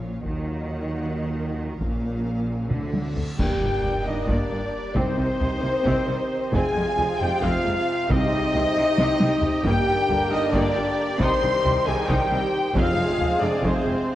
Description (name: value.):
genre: cinematic, epic orchestral film score.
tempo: 270 BPM (eighths).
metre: 7/8.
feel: straight.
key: Eb dorian, F dorian from 3.4 s.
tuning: A4 = 440 Hz.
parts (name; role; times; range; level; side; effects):
warm symphonic violin section; melody; 0.0-14.2 s; C5 to C6; -34 LUFS; left 3 dB; none.
warm symphonic violin section; second line; 0.0-14.2 s; A4 to C6; -33 LUFS; left 2 dB; none.
clear symphonic viola section; accompaniment; 0.0-14.2 s; D3 to Ab4; -32 LUFS; right 1 dB; none.
clear trombone section; sustained chords; 0.0-14.2 s; A2 to C4; -32 LUFS; right 1 dB; none.
dark French horn section; sustained chords; 0.0-14.2 s; Bb3 to C5; -28 LUFS; left 2 dB; none.
rich symphonic cello section; bass; 0.0-13.9 s; F2 to Eb3; -30 LUFS; right 1 dB; none.
rich symphonic double bass section; bass; 0.0-13.9 s; F1 to Eb2; -30 LUFS; right 1 dB; none.
taiko ensemble; drums; 0.3-14.1 s; none; -28 LUFS; equal; none.
cymbal swell, clash cymbals and concert bass drum; percussion; 0.3-4.2, 12.8-14.2 s; none; -33 LUFS; equal; none.
reverse cymbal and impact; sound effects; 3.1-5.0 s; none; -38 LUFS; equal; none.
small flute group; second line; 3.4-14.2 s; C5 to C6; -32 LUFS; equal; none.
clear symphonic string section; sustained chords; 3.4-14.2 s; C4 to G5; -32 LUFS; equal; none.
clear trumpet section; stabs; 3.4-14.2 s; C5 to C6; -30 LUFS; right 1 dB; none.
timpani; percussion; 5.0-5.6, 8.1-8.7, 12.8-13.4 s; F2 to C3; -31 LUFS; equal; none.
room: moderate scoring stage reverb, RT60 1.7 s.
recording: worn, warbling old tape, cassette tape, warbly pitch drift.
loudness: -20 LUFS.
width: side -13 dB against mid.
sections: 0.0-3.4 A section; 3.4-14.2 B section.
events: drum fill 2.7-3.4, 9.0-9.7; reverse cymbal 3.1-3.4; band accent 3.4-3.8; impact 3.4-5.0.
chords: 0.3 Ebm; 1.8 Bbm; 2.7 D7; 3.4 Gm; 5.0 Cm; 6.5 Fm; 8.1 Cm; 9.7 Gm; 11.2 Cm; 12.8 Fm.